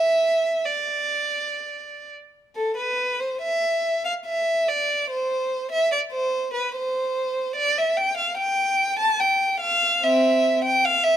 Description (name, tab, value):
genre	classical, baroque-style suite movement for unaccompanied violin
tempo	72 BPM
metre	3/4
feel	uneven beats, rubato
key	unclear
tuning	A4 = 440 Hz
part	rich violin	solo	0.0-11.2 s	C4 to A5	-20 LUFS	right 1 dB	none
room	moderate recital hall reverb, RT60 1.4 s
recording	close, detailed microphones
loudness	-20 LUFS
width	side -10 dB against mid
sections	0.0-2.6 A section; 2.6-11.2 A section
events	none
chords	none